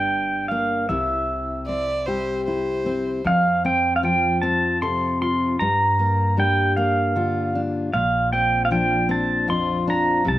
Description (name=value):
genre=acoustic folk-pop ballad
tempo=51 BPM (dotted quarters)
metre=6/8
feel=straight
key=F major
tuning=A4 = 440 Hz
part: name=pedal steel guitar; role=melody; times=0.0-10.4 s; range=E5 to C6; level=-21 LUFS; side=right 2 dB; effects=none
part: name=fingerpicked steel-string acoustic guitar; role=accompaniment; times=0.0-10.4 s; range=F2 to A4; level=-24 LUFS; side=left 2 dB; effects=none
part: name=upright bass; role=bass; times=0.0-10.4 s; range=G1 to G2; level=-28 LUFS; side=equal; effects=none
part: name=rich violin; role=second line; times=1.7-3.2 s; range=C5 to D5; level=-28 LUFS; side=right 2 dB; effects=slapback echo
room=little or no reverb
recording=recorded outdoors, with no room sound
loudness=-19 LUFS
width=side -14 dB against mid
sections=0.0-3.3 A section; 3.3-10.4 B section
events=none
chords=0.0 Gm; 0.9 C; 3.3 F; 5.6 Gm7; 7.9 Bbadd9